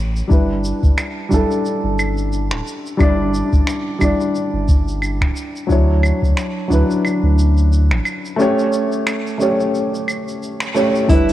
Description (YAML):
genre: sunset chillout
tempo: 89 BPM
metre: 4/4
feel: swing 57% on 16ths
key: G lydian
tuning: A4 = 439 Hz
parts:
  - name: dark baby grand piano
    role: accompaniment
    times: 0.0-11.3 s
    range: F#3 to D5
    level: -18 LUFS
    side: equal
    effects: auto-pan, cassette tape, analog delay
  - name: warm sub bass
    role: bass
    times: 0.0-11.3 s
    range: D1 to D2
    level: -18 LUFS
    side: equal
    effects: none
  - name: vintage brush drum kit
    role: drums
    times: 0.2-11.3 s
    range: claves, finger snaps, hi-hat, shaker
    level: -26 LUFS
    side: right 1 dB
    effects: none
  - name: electronic kick drum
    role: drums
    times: 0.3-6.9, 11.1-11.2 s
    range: none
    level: -16 LUFS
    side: equal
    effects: none
  - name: nylon-string guitar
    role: melody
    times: 11.1-11.3 s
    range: E4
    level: -16 LUFS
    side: right 2 dB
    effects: vintage 12-bit sampler grit, cassette tape
room: light reverb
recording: home recording on cassette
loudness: -15 LUFS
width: side -13 dB against mid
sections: 0.0-11.1 A section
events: break 8.4-11.1; band accent 10.6-10.9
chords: 0.3 G6; 5.7 Dmaj9; 8.4 A7